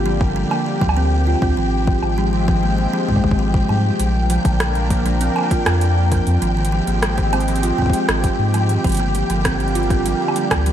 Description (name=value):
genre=IDM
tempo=99 BPM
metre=4/4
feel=straight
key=F dorian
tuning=A4 = 439 Hz
part: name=warm analog pad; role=sustained chords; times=0.0-10.7 s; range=D3 to Bb4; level=-24 LUFS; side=left 2 dB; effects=chorus, shimmer reverb
part: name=warm sub bass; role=bass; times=0.0-10.7 s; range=G1 to Ab2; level=-19 LUFS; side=equal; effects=none
part: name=flickering grainy texture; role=texture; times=0.0-10.7 s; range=G5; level=-26 LUFS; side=left 1 dB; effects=built-in reverb, shimmer reverb
part: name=buzzing kalimba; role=arpeggios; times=0.1-10.7 s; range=C3 to F4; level=-22 LUFS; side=right 2 dB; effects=dub echo, shimmer reverb
part: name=electronic kick drum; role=drums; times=0.2-10.6 s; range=none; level=-21 LUFS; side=equal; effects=none
part: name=booming analog drum machine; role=drums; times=0.5-10.7 s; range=bongos, hi-hat, rim click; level=-24 LUFS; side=right 2 dB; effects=tape echo
room=moderate echo chamber reverb, RT60 2.1 s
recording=echo-heavy mix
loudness=-16 LUFS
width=side -10 dB against mid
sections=0.0-10.7 A section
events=none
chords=0.0 Gm; 1.6 Fmadd9/Ab; 4.0 Bb; 6.4 Fmadd9/Ab; 8.8 Gm